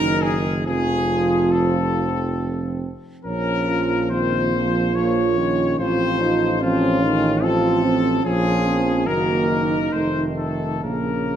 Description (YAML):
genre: classical, hymn-like piece for brass band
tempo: 71 BPM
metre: 3/4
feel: uneven beats, rubato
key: Bb minor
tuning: A4 = 440 Hz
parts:
  - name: bright trumpet section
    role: melody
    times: 0.0-11.4 s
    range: F4 to Db5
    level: -24 LUFS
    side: left 6 dB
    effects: none
  - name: mellow French horn section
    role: second line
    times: 0.0-11.4 s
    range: A3 to F4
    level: -25 LUFS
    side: right 6 dB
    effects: none
  - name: clear trombone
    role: accompaniment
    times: 0.0-11.4 s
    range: Db3 to F3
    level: -27 LUFS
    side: right 4 dB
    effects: none
  - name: mellow euphonium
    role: accompaniment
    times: 0.0-11.4 s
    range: Bb3 to Gb4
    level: -24 LUFS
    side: equal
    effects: none
  - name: mellow tuba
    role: bass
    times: 0.0-11.4 s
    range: F1 to Bb1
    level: -24 LUFS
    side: equal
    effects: none
room: moderate scoring stage reverb, RT60 1.9 s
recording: none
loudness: -18 LUFS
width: side -9 dB against mid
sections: 0.0-11.4 A section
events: none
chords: 0.0 Ebm/Gb; 0.7 F; 3.2 Bbm; 5.8 F7/A; 8.2 Bbm; 9.1 Ebm/Gb; 9.9 F7; 10.8 Bbm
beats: | 0.66 1.52 2.37 | 3.25 4.11 4.95 | 5.79 6.61 7.43 | 8.24 9.07 9.93 | 10.82